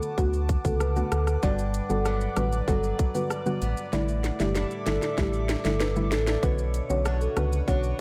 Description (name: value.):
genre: dancehall.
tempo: 96 BPM.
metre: 4/4.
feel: straight.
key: B minor.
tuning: A4 = 440 Hz.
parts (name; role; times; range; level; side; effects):
marimba with medium mallets; melody; 0.0-7.8 s; F#4 to D5; -34 LUFS; equal; delay.
soft round pluck; accompaniment; 0.0-8.0 s; D3 to F#4; -34 LUFS; equal; chorus, sidechain pumping.
glassy FM pad; sustained chords; 0.0-8.0 s; A4 to D6; -38 LUFS; equal; ensemble chorus, built-in reverb, sidechain pumping.
island pop drum kit; drums; 0.0-8.0 s; hi-hat, kick drum, rim click, shaker, snare drum; -32 LUFS; equal; none.
sub bass with octave; bass; 0.2-7.9 s; F#1 to D2; -30 LUFS; equal; none.
picked steel-string acoustic guitar; arpeggios; 1.4-8.0 s; G2 to C#5; -38 LUFS; equal; lush chorus.
room: light reverb, digital ambience.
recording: none.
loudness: -26 LUFS.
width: mono.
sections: 0.0-6.4 A section; 6.4-8.0 B section.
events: drum fill 3.9-6.4.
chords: 0.0 D6; 1.4 Gmaj7; 3.9 A7sus4; 6.4 Bmadd9.